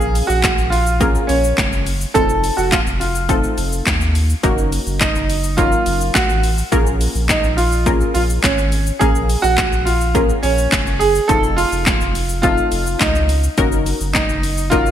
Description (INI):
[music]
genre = dance-pop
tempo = 105 BPM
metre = 4/4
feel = straight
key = Bb minor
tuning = A4 = 440 Hz
[part]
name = warm grand piano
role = melody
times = 0.0-14.9 s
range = Db4 to A4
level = -19 LUFS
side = right 2 dB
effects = lush chorus, ping-pong delay
[part]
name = punchy chord stab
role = accompaniment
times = 0.0-14.9 s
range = Gb3 to F5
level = -22 LUFS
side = left 2 dB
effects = chorus, sidechain pumping
[part]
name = saturated sub bass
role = bass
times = 0.0-14.9 s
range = F1 to Eb2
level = -20 LUFS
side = equal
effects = sidechain pumping
[part]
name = house drum kit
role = drums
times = 0.0-14.9 s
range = handclaps, hi-hat, kick drum, shaker, snare drum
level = -19 LUFS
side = equal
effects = gated reverb
[sound]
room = light reverb, digital ambience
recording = bright 1980s-style digital production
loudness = -14 LUFS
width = side -10 dB against mid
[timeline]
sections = 0.0-14.9 A section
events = none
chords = 0.0 Bbm7; 2.1 F7; 4.4 Ebm7/Gb; 6.7 Bbm7; 11.3 F7; 13.6 Ebm7/Gb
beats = 0.44 1.01 1.58 | 2.15 2.72 3.29 3.87 | 4.44 5.01 5.58 6.15 | 6.72 7.29 7.87 8.44 | 9.01 9.58 10.15 10.72 | 11.29 11.87 12.44 13.01 | 13.58 14.15 14.72